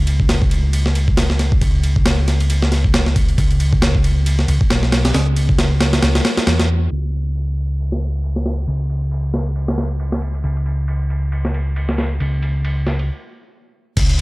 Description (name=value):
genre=breakbeat, breaks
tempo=136 BPM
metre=4/4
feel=swing 57% on 16ths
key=C# minor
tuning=A4 = 440 Hz
part: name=picked electric bass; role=bass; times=0.0-14.2 s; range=B1 to E2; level=-17 LUFS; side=equal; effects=tube saturation, low-pass filter
part: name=breakbeat sampler-style drum kit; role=drums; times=0.1-14.2 s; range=crash cymbal, kick drum, ride cymbal, snare drum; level=-18 LUFS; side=equal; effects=low-pass filter on snare, studio reverb, low-pass filter on cymbals, low-pass filter on kick
room=little or no reverb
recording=dark, warm production, low-pass filter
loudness=-15 LUFS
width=side -21 dB against mid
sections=0.0-6.9 A section; 6.9-14.0 B section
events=filter sweep 6.9-14.0; stop 13.1-14.0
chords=none